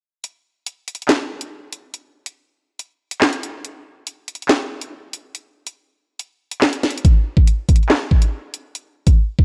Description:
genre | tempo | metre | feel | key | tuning
hip hop | 141 BPM | 4/4 | half-time | none | none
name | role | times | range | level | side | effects
drill drum kit | drums | 0.2-9.4 s | handclaps, hi-hat, kick drum, snare drum | -18 LUFS | equal | none
room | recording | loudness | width
light reverb | worn, warbling old tape, cassette tape, warbly pitch drift | -18 LUFS | mono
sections
0.2-9.4 A section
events
kick muted 0.2-7.0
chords
none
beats
| 0.24 0.66 1.09 1.51 | 1.94 2.37 2.79 3.22 | 3.64 4.07 4.49 4.92 | 5.34 5.77 6.20 6.62 | 7.05 7.47 7.90 8.32 | 8.75 9.18

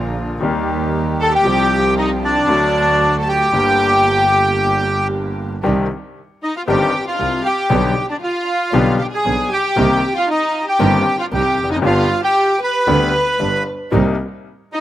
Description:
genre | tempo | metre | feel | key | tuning
tango | 116 BPM | 4/4 | rubato | G minor, C minor from 5.6 s | A4 = 441 Hz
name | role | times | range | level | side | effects
bright concert grand piano | accompaniment | 0.0-14.1 s | G1 to G4 | -20 LUFS | left 3 dB | slapback echo
rich chamber string section | stabs | 0.0-14.1 s | G3 to G4 | -28 LUFS | right 6 dB | slapback echo
dark double bass | bass | 0.0-14.1 s | F1 to Eb2 | -22 LUFS | right 3 dB | none
bandoneon | melody | 1.2-14.8 s | D4 to B5 | -17 LUFS | equal | slapback echo
clear studio violin section | second line | 1.2-14.8 s | D4 to B4 | -21 LUFS | equal | slapback echo
room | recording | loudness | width
little or no reverb | recorded outdoors, with no room sound | -14 LUFS | side -13 dB against mid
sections
0.0-5.6 A section; 5.6-14.8 B section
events
none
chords
0.4 Eb; 1.5 Csus4; 2.5 D; 3.5 Gm; 5.6 Cmadd9; 7.7 G/B; 9.8 Cm7; 11.8 G; 13.9 Cm7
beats
0.42 0.94 | 1.46 1.97 2.49 3.01 | 3.53 4.05 4.58 5.11 | 5.63 6.16 6.68 7.20 | 7.71 8.23 8.74 9.26 | 9.77 10.29 10.80 11.32 | 11.84 12.36 12.88 13.40 | 13.93 14.45

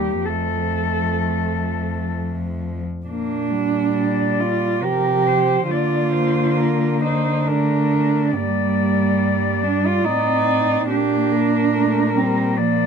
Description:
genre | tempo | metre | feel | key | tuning
classical, lyrical piece for cello ensemble | 63-72 BPM | 3/4 | rubato | Bb major | A4 = 437 Hz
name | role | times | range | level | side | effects
muted cello | melody | 0.0-12.9 s | G4 to D5 | -24 LUFS | left 4 dB | none
muted cello | second line | 0.0-12.9 s | A3 to G4 | -21 LUFS | right 6 dB | none
muted cello | accompaniment | 0.0-12.9 s | F3 to C4 | -25 LUFS | left 5 dB | none
muted cello | bass | 0.0-12.9 s | Eb2 to D3 | -24 LUFS | equal | none
room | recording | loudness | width
little or no reverb | close, detailed microphones | -17 LUFS | side -6 dB against mid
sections
0.0-3.1 A section; 3.1-12.9 A section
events
none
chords
0.3 F; 3.1 Bb; 5.7 Bb/D; 8.3 Gm; 10.9 Gm/Bb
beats
| 0.27 1.22 2.15 | 3.08 3.96 4.83 | 5.71 6.59 7.47 | 8.35 9.21 10.05 | 10.90 11.73 12.57

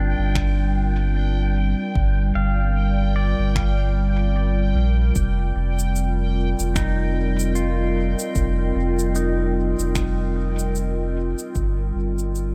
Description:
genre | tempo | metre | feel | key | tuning
ambient dub | 75 BPM | 4/4 | swing 59% on 16ths | unclear | A4 = 439 Hz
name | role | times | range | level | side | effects
warbly tape-like pad | sustained chords | 0.0-12.5 s | G3 to Eb5 | -28 LUFS | equal | chorus, built-in reverb
pedal steel guitar | arpeggios | 0.0-11.7 s | D4 to F5 | -35 LUFS | equal | tape echo
warm sub bass | bass | 0.0-12.5 s | F1 to Bb1 | -23 LUFS | equal | none
bubbling stepped-filter texture | texture | 0.0-12.5 s | G5 | -37 LUFS | equal | chorus, built-in reverb
electronic finger snaps and cabasa | drums | 0.4-12.5 s | none | -34 LUFS | equal | dub echo
electronic kick drum | drums | 0.4-11.7 s | none | -27 LUFS | equal | none
room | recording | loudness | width
digital ambience | none | -22 LUFS | mono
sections
0.0-12.5 A section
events
fade-out 9.4-12.5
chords
0.0 Gm7; 5.2 F5; 11.6 Gm7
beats
0.36 1.16 | 1.96 2.76 3.56 4.36 | 5.16 5.96 6.76 7.56 | 8.36 9.16 9.96 10.76 | 11.56 12.36

